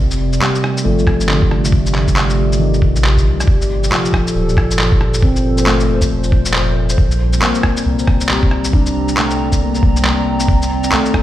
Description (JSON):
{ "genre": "future garage", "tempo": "137 BPM", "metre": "4/4", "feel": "swing 61% on 16ths", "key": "G minor", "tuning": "A4 = 440 Hz", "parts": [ { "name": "felt-muted upright piano", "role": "accompaniment", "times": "0.0-11.2 s", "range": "D3 to D4", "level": "-20 LUFS", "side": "left 2 dB", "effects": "sidechain pumping, digital delay" }, { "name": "warbly tape-like pad", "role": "sustained chords", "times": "0.0-11.2 s", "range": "Bb2 to Bb5", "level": "-19 LUFS", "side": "right 1 dB", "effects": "chorus, built-in reverb, sidechain pumping" }, { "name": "soft dub sub bass", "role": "bass", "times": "0.0-10.9 s", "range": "D1 to C2", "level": "-18 LUFS", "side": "equal", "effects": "sidechain pumping" }, { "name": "electronic shaker, handclaps and rim click", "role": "drums", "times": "0.1-11.2 s", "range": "none", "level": "-19 LUFS", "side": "equal", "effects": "small room ambience" }, { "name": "electronic kick drum", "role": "drums", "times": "1.1-11.2 s", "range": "none", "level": "-14 LUFS", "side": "equal", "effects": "small room ambience" } ], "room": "light reverb, digital ambience", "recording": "played on a big sound system in a bare room, stone room reverb", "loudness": "-12 LUFS", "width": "side -13 dB against mid", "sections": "0.0-3.5 A section; 3.5-11.2 B section", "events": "none", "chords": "0.0 F13; 3.5 Gm11; 7.0 Bb69; 10.5 Cm9" }